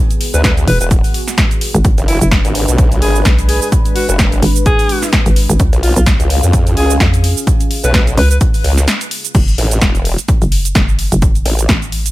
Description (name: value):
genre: bass house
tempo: 128 BPM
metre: 4/4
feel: swing 57% on 16ths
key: F# minor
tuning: A4 = 440 Hz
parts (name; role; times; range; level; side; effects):
- dark analog pad; sustained chords; 0.0-9.3 s; G#3 to E#5; -23 LUFS; equal; chorus, phaser, sidechain pumping
- house drum kit; drums; 0.1-12.1 s; cabasa, crash cymbal, hi-hat, snare drum; -18 LUFS; equal; small room reverb
- clear alto saxophone; melody; 0.3-8.4 s; E4 to B4; -20 LUFS; equal; ping-pong delay
- formant-sweep wobble bass; bass; 0.3-11.7 s; E1 to E#2; -14 LUFS; equal; chorus, overdrive, sidechain pumping
- electronic kick drum; drums; 0.4-11.8 s; none; -13 LUFS; equal; small room reverb
- hollow knocking FM bass; bass; 0.7-12.1 s; E1 to E#2; -13 LUFS; equal; tube saturation, sidechain pumping
room: little or no reverb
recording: none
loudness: -10 LUFS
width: side -17 dB against mid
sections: 0.0-9.3 A section; 9.3-12.1 A section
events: drop 0.0-9.3, 9.3-12.1; break 8.9-9.3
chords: 0.0 E; 1.8 G#dim; 5.6 C#; 9.3 F#m